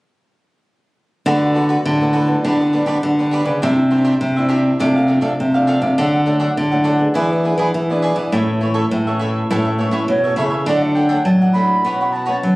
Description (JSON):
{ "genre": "samba", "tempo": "102 BPM", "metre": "4/4", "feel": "straight", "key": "D major", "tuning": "A4 = 443 Hz", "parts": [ { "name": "cavaquinho", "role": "accompaniment", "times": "1.3-12.4 s", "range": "D4 to F#5", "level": "-22 LUFS", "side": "right 1 dB", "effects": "none" }, { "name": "nylon-string guitar", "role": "accompaniment", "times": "1.3-12.6 s", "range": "F#2 to G#4", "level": "-23 LUFS", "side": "left 1 dB", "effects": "none" }, { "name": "nylon-string guitar", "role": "bass", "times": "1.3-12.6 s", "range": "A2 to F#3", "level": "-16 LUFS", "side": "equal", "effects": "none" }, { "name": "mellow jazz flute", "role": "melody", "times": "10.1-12.6 s", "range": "C#5 to B5", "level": "-19 LUFS", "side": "right 2 dB", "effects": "none" } ], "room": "light reverb", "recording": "recorded on a phone in the room, club reverb, compression", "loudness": "-14 LUFS", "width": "side -21 dB against mid", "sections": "1.3-10.7 A section; 10.7-12.6 B section", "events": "none", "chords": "1.3 D6; 2.4 G/D; 3.6 Cadd9; 4.8 F6/C; 6.0 D; 7.2 E7; 8.3 A; 10.7 D; 11.9 Bsus2" }